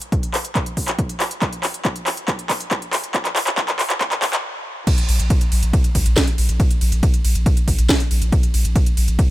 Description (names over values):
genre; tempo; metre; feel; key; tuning
driving peak-time techno; 139 BPM; 4/4; straight; unclear; A4 = 440 Hz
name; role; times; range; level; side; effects
techno drum kit; drums; 0.0-9.3 s; crash cymbal, handclaps, hi-hat, ride cymbal, snare drum; -22 LUFS; equal; overdrive, high-pass filter on snare, small room ambience, high-pass filter on hats, high-pass filter on cymbals
electronic kick drum; drums; 0.1-9.3 s; none; -18 LUFS; equal; small room ambience
saturated sub bass; bass; 5.1-9.2 s; Bb1; -18 LUFS; equal; overdrive, sidechain pumping, low-pass filter
room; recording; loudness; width
little or no reverb; high-pass filter; -17 LUFS; side -16 dB against mid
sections
0.0-4.9 A section; 4.9-9.3 B section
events
build-up 0.0-4.9; drum fill 0.0-4.4; filter sweep 0.0-4.9; stop 4.4-4.9; drop 4.9-9.3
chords
none